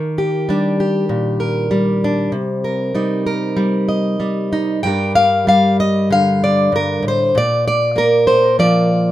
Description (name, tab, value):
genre	folk, solo fingerstyle acoustic guitar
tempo	96 BPM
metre	4/4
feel	straight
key	G minor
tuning	A4 = 441 Hz
part	fingerpicked plugged-in steel-string acoustic guitar	solo	0.0-9.1 s	G2 to G5	-14 LUFS	equal	none
room	moderate studio reverb, RT60 0.8 s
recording	minimal, uncompressed stereo recording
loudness	-14 LUFS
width	side -13 dB against mid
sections	0.0-9.1 A section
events	none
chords	0.0 Ebmaj7; 2.3 Cm7; 4.8 Gm7; 7.3 Bb